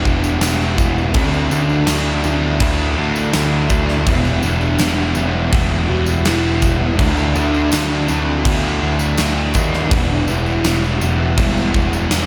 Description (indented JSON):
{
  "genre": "rock, shoegaze and dream pop",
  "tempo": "82 BPM",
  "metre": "4/4",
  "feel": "straight",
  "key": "E minor",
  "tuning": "A4 = 444 Hz",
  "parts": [
    { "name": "pure sine lead", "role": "melody", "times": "0.0-12.1 s", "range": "G3 to F#4", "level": "-27 LUFS", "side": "equal", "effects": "chorus, tape echo" },
    { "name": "crunchy overdriven guitar", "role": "riff", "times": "0.0-12.3 s", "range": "D3 to E4", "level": "-24 LUFS", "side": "equal", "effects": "reverse reverb" },
    { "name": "thick fuzz guitar", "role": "riff", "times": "0.0-12.3 s", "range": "E2 to D4", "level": "-24 LUFS", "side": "equal", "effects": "distortion, subtle chorus" },
    { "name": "growling picked electric bass", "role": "bass", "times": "0.0-12.3 s", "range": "E1 to D#2", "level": "-22 LUFS", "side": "equal", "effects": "overdrive" },
    { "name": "huge arena drum kit", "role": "drums", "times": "0.1-12.3 s", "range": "crash cymbal, kick drum, snare drum", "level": "-22 LUFS", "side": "equal", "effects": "none" },
    { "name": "tambourine", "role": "percussion", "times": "0.1-12.3 s", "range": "none", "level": "-33 LUFS", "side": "equal", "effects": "none" }
  ],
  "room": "studio reverb",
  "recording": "none",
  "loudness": "-17 LUFS",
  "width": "mono",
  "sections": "0.0-12.3 A section",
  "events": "none",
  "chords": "0.0 Em7; 1.1 Dsus2; 4.1 Em7; 7.0 Dsus2; 9.9 Em",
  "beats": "0.42 | 1.15 1.88 2.61 3.34 | 4.07 4.80 5.53 6.26 | 6.99 7.72 8.45 9.19 | 9.92 10.65 11.38 12.11"
}